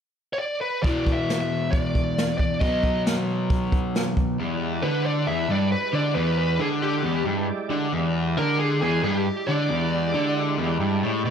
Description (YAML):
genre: blues rock power trio and southern rock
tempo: 135 BPM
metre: 4/4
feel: straight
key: unclear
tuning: A4 = 440 Hz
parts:
  - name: bluesy overdriven lead guitar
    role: melody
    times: 0.3-10.3 s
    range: G4 to E5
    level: -26 LUFS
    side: equal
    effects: distortion
  - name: overdriven semi-hollow guitar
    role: riff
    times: 0.8-11.3 s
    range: E2 to B3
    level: -23 LUFS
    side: equal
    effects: none
  - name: jazz brush drum kit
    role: drums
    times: 0.8-4.3 s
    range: hi-hat, kick drum, snare drum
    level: -25 LUFS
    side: equal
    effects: none
  - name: overdriven tonewheel organ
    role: sustained chords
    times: 4.4-11.3 s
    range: G#3 to D5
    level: -34 LUFS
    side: right 4 dB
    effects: chorus vibrato, slow rotary speaker
room: moderate large studio reverb, RT60 1.0 s, small room ambience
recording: none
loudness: -21 LUFS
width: side -7 dB against mid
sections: 0.8-4.4 A section; 4.4-11.3 B section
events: none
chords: 0.0 N.C.; 0.8 E5; 2.6 B; 4.4 E7#9